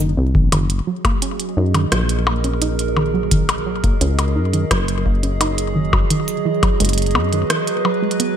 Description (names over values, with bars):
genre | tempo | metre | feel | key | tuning
IDM | 86 BPM | 4/4 | straight | Gb major | A4 = 440 Hz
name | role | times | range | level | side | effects
warbly dusty pluck | arpeggios | 0.0-8.3 s | Eb3 to Eb4 | -22 LUFS | right 2 dB | chorus, ping-pong delay
deep acid bass | bass | 0.0-7.4 s | Gb1 to Gb2 | -20 LUFS | left 1 dB | tube saturation
glitchy drum kit | drums | 0.0-8.3 s | hi-hat, percussion blips, rim click | -22 LUFS | left 1 dB | gated reverb, ping-pong delay
electronic kick drum | drums | 0.3-6.8 s | none | -19 LUFS | left 1 dB | none
warbly tape-like pad | sustained chords | 0.8-8.4 s | Gb3 to Eb5 | -23 LUFS | right 4 dB | chorus, built-in reverb, sidechain pumping
room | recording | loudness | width
light reverb, digital ambience | bright 1980s-style digital production | -16 LUFS | side -9 dB against mid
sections
0.0-8.4 A section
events
none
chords
0.0 Ab7/Gb (rootless); 0.5 Gb6; 6.1 Emaj9 (rootless)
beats
| 0.52 1.22 1.92 2.62 | 3.31 4.01 4.71 5.41 | 6.11 6.80 7.50 8.20